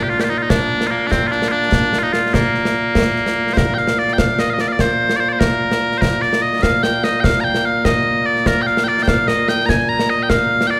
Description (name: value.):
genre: scottish traditional, Scottish pipe music.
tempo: 98 BPM (dotted quarters).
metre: 6/8.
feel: straight.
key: Bb major.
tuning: A4 = 439 Hz.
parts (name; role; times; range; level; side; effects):
loud bright bagpipes; melody; 0.0-10.8 s; Bb2 to Bb5; -18 LUFS; equal; none.
concert snare drum and concert bass drum; drums; 0.2-10.7 s; none; -22 LUFS; equal; none.
room: moderate scoring stage reverb, RT60 2.1 s.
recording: recorded in a church or concert hall.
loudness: -17 LUFS.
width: mono.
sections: 0.0-3.6 A section; 3.6-10.8 B section.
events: none.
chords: none.